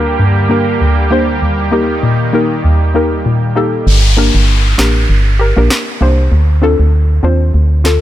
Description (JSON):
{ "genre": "dancehall", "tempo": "98 BPM", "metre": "4/4", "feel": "swing 56% on 16ths", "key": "G minor", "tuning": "A4 = 444 Hz", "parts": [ { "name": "soft round pluck", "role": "accompaniment", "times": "0.0-7.9 s", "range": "D2 to C5", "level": "-13 LUFS", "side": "left 1 dB", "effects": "chorus, low-pass filter" }, { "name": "lush unison pad", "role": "sustained chords", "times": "0.0-3.8 s", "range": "D3 to G4", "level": "-18 LUFS", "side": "right 2 dB", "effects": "chorus, low-pass filter" }, { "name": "organ-like FM bass", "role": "bass", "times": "3.9-8.0 s", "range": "G1 to Eb2", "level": "-10 LUFS", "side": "equal", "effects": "none" }, { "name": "downlifter", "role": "sound effects", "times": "3.9-8.0 s", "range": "none", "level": "-20 LUFS", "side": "left 1 dB", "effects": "none" }, { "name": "electronic rim click and snare drum", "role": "drums", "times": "4.8-8.0 s", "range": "none", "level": "-18 LUFS", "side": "equal", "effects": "none" } ], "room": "light reverb, digital ambience", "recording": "none", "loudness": "-9 LUFS", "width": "side -13 dB against mid", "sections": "0.0-3.9 A section; 3.9-8.0 B section", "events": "filter sweep 0.0-3.9; kick muted 3.9-8.0", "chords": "0.0 Gm; 1.4 Eb; 3.9 Gm; 6.3 Dm7" }